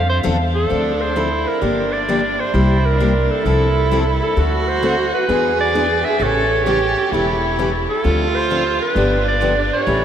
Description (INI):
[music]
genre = acoustic string swing (jazz manouche)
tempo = 131 BPM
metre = 4/4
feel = swing 64% on 8ths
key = D minor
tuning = A4 = 440 Hz
[part]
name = bright clarinet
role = melody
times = 0.0-10.0 s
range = A4 to E5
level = -20 LUFS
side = right 1 dB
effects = analog delay
[part]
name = upright bass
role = bass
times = 0.0-10.0 s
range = E1 to F2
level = -21 LUFS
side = equal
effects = none
[part]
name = picked steel-string acoustic guitar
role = accompaniment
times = 0.2-10.0 s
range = C3 to A4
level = -22 LUFS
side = left 3 dB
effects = none
[part]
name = warm violin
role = second line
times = 0.7-10.0 s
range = D4 to A4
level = -20 LUFS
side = right 3 dB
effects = none
[sound]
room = wet huge ambient reverb, RT60 7.0 s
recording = dreamy mix soaked in reverb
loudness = -15 LUFS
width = side -9 dB against mid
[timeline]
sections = 0.7-10.0 A section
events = none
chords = 0.0 Dm7; 1.6 Gm7; 2.5 C7; 3.5 Fmaj7/C; 4.4 D7; 5.3 E7; 6.2 A7; 8.0 Dm7; 9.0 G7